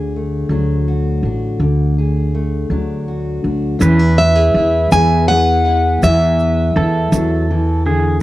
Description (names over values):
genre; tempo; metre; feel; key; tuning
acoustic folk duo or small band; 54 BPM (dotted quarters); 6/8; straight; unclear; A4 = 438 Hz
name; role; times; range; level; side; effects
fingerpicked steel-string acoustic guitar; accompaniment; 0.0-8.2 s; D3 to G#4; -19 LUFS; left 2 dB; none
upright bass; bass; 0.0-8.2 s; A1 to E2; -16 LUFS; equal; none
pedal steel guitar; second line; 3.8-8.2 s; G#4 to B4; -24 LUFS; right 2 dB; none
egg shaker; percussion; 3.8-7.3 s; none; -32 LUFS; right 8 dB; none
picked plugged-in steel-string acoustic guitar; melody; 4.2-7.5 s; E5 to G#5; -15 LUFS; equal; tape echo
room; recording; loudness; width
light reverb; home recording on cassette; -13 LUFS; side -16 dB against mid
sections
0.0-3.8 A section; 3.8-8.2 B section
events
none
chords
0.0 D; 3.8 E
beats
0.50 | 1.61 2.71 | 3.82 4.92 | 6.02 7.12